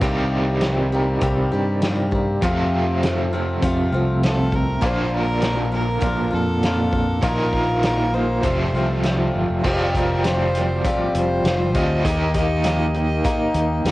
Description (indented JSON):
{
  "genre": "folk rock and heartland rock",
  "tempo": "100 BPM",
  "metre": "4/4",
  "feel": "straight",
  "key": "unclear",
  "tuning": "A4 = 444 Hz",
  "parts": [
    { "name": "picked swing-style acoustic guitar", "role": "accompaniment", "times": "0.0-13.9 s", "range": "F2 to G4", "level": "-26 LUFS", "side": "left 2 dB", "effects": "cassette tape" },
    { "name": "crunchy overdriven guitar", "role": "riff", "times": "0.0-13.9 s", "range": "F2 to G4", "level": "-23 LUFS", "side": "right 1 dB", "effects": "tremolo, cassette tape" },
    { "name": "fingered electric bass", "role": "bass", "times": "0.0-13.9 s", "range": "F1 to G2", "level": "-23 LUFS", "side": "equal", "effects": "none" },
    { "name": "loose indie drum kit", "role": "drums", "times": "0.0-13.9 s", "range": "crash cymbal, hi-hat, kick drum, snare drum", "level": "-25 LUFS", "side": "equal", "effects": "cassette tape" },
    { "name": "warm fiddle", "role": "melody", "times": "4.3-13.9 s", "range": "G4 to Eb5", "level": "-26 LUFS", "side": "equal", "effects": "none" }
  ],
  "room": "light reverb",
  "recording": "home recording on cassette",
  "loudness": "-18 LUFS",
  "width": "side -18 dB against mid",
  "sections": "0.0-9.6 A section; 9.6-13.9 B section",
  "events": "none",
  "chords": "0.0 Cm7; 2.4 F; 4.8 Bb; 7.2 Ebsus2/Bb; 8.4 Fadd9; 9.6 Fsus2; 12.0 Eb",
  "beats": "| 0.02 0.62 1.22 1.82 | 2.42 3.02 3.62 4.22 | 4.83 5.43 6.03 6.63 | 7.23 7.83 8.44 9.04 | 9.64 10.24 10.84 11.44 | 12.04 12.65 13.25 13.85"
}